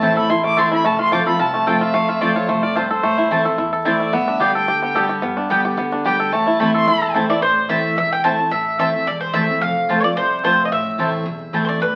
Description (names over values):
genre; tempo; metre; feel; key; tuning
bluegrass; 219 BPM; 4/4; straight; A minor; A4 = 439 Hz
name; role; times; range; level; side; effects
bluegrass banjo; melody; 0.0-7.4 s; A3 to A4; -21 LUFS; equal; none
clear fiddle; second line; 0.0-12.0 s; B4 to D6; -25 LUFS; equal; none
picked steel-string acoustic guitar; accompaniment; 0.0-12.0 s; E2 to G4; -26 LUFS; equal; none
mandolin; stabs; 0.0-11.6 s; B3 to A5; -25 LUFS; equal; none
upright bass; bass; 0.0-12.0 s; E1 to E2; -43 LUFS; equal; none
mandolin; melody; 7.3-12.0 s; B4 to A5; -21 LUFS; equal; none
room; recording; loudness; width
wet studio reverb, RT60 0.8 s; very old 78 rpm record, vinyl crackle, nothing above 10.7 kHz; -18 LUFS; mono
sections
0.0-7.4 A section; 7.4-12.0 B section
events
fiddle solo 0.0-7.4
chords
0.0 Am; 0.9 F; 3.0 Am; 4.1 G; 6.3 Am; 9.6 F; 10.7 Am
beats
0.03 0.30 0.58 | 0.85 1.12 1.40 1.67 | 1.95 2.22 2.49 2.77 | 3.04 3.31 3.59 3.86 | 4.13 4.41 4.68 4.96 | 5.23 5.50 5.78 6.05 | 6.32 6.60 6.87 7.15 | 7.42 7.69 7.97 8.24 | 8.52 8.79 9.07 9.34 | 9.62 9.89 10.16 10.44 | 10.71 10.99 11.26 11.54 | 11.81